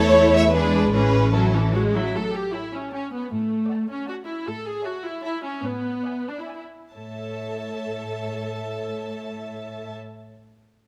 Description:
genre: quick classical-period movement for string orchestra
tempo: 130-159 BPM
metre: 3/4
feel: straight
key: A major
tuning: A4 = 439 Hz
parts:
  - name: rich chamber violin section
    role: melody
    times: 0.0-9.9 s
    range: E4 to A5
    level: -34 LUFS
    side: equal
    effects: none
  - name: rich chamber violin section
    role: second line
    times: 0.0-10.0 s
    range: A4 to G5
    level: -26 LUFS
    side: equal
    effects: none
  - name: rich studio viola section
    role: accompaniment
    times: 0.0-10.0 s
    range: E3 to A4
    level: -28 LUFS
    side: equal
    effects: none
  - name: rich chamber cello section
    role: bass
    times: 0.0-9.9 s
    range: A2 to E4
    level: -34 LUFS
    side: equal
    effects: none
  - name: rich chamber double bass section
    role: bass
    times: 0.0-1.9 s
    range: A1 to E2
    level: -25 LUFS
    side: equal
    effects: none
room: moderate scoring stage reverb, RT60 1.5 s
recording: close, detailed microphones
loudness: -24 LUFS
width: mono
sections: 0.0-2.1 A section; 2.1-6.9 B section; 6.9-9.6 C section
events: slowing down 3.9-6.9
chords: 0.0 A/E; 0.6 E7; 0.9 A; 2.1 A7; 3.3 D/A; 4.5 A; 5.6 E7/A; 6.9 A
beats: 0.16 0.55 | 0.95 1.35 1.75 | 2.14 2.54 2.93 | 3.31 3.70 4.08 | 4.46 4.85 5.24 | 5.64 6.05 6.48 | 6.94 7.39 7.83 | 8.28 8.72 9.17

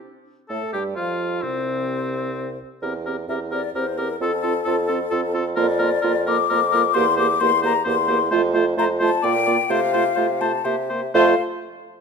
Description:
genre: quick classical-period movement for wind quintet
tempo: 130 BPM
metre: 3/4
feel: rubato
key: F major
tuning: A4 = 440 Hz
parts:
  - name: mellow hollow concert flute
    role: melody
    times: 0.5-11.4 s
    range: A4 to D6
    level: -23 LUFS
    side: left 9 dB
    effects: none
  - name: clear oboe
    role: second line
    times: 0.5-11.3 s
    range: C4 to D5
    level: -27 LUFS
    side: left 3 dB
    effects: none
  - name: mellow French horn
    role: accompaniment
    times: 0.5-11.3 s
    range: C3 to C4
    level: -29 LUFS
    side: right 2 dB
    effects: none
  - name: mellow clarinet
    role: accompaniment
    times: 0.5-11.4 s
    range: C4 to A4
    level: -26 LUFS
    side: right 10 dB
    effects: none
  - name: mellow bassoon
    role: bass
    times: 0.5-11.3 s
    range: C2 to C3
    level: -25 LUFS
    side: right 3 dB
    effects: none
room: moderate recital hall reverb, RT60 1.7 s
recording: none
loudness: -18 LUFS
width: side -5 dB against mid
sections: 0.0-11.1 A section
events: none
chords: 0.0 F; 1.4 N.C.; 2.8 C7/E; 4.2 F; 5.6 Bb/F; 7.0 C7/E; 8.3 F; 9.2 Bb; 9.7 F/C; 10.7 C7; 11.1 F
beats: | 0.03 0.51 0.97 | 1.44 1.90 2.37 | 2.83 3.29 3.75 | 4.21 4.67 5.13 | 5.58 6.04 6.51 | 6.96 7.42 7.87 | 8.32 8.78 9.24 | 9.70 10.17 10.65 | 11.15

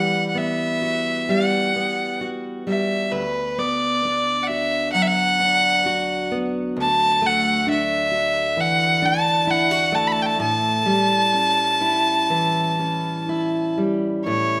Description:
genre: celtic folk, Celtic slow air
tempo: 61-67 BPM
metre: 4/4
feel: rubato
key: A mixolydian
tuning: A4 = 440 Hz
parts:
  - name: rich fiddle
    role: melody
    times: 0.0-14.6 s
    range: B4 to B5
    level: -22 LUFS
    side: equal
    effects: none
  - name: fingerpicked steel-string acoustic guitar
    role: accompaniment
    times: 0.0-14.6 s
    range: D2 to F#4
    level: -26 LUFS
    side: equal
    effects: none
room: moderate recital hall reverb, RT60 1.4 s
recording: none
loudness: -21 LUFS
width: mono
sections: 0.0-14.3 A section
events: none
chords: 0.0 Emadd9; 3.1 Bm/D; 6.8 Dadd9; 10.4 A7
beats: 0.36 1.31 2.23 | 3.14 4.05 4.96 5.87 | 6.78 7.68 8.59 9.49 | 10.40 11.35 12.31 13.29 | 14.26

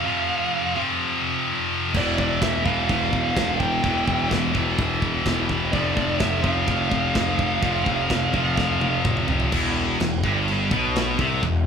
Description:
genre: heavy metal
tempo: 127 BPM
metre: 4/4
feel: straight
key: E phrygian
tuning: A4 = 440 Hz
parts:
  - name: high-gain lead guitar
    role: melody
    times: 0.0-9.0 s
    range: D5 to G5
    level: -27 LUFS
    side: right 2 dB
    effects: distortion
  - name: scooped high-gain guitar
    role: riff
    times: 0.0-11.6 s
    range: E2 to F3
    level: -23 LUFS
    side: left 1 dB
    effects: distortion
  - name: fuzz picked electric bass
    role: bass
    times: 1.9-11.7 s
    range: E1 to C2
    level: -26 LUFS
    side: left 1 dB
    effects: overdrive
  - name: tight metal drum kit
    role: drums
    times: 1.9-11.5 s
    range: china cymbal, crash cymbal, kick drum, snare drum, toms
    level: -26 LUFS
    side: equal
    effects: none
room: light reverb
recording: band playing live in one room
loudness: -20 LUFS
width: side -7 dB against mid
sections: 0.0-9.5 A section; 9.5-11.7 B section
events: drum fill 8.6-9.5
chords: 0.0 F5; 1.9 E5; 5.7 F5; 9.5 Em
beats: | 0.06 0.53 1.00 1.47 | 1.95 2.42 2.89 3.36 | 3.84 4.31 4.78 5.26 | 5.73 6.20 6.68 7.15 | 7.63 8.10 8.58 9.05 | 9.53 10.00 10.48 10.95 | 11.43

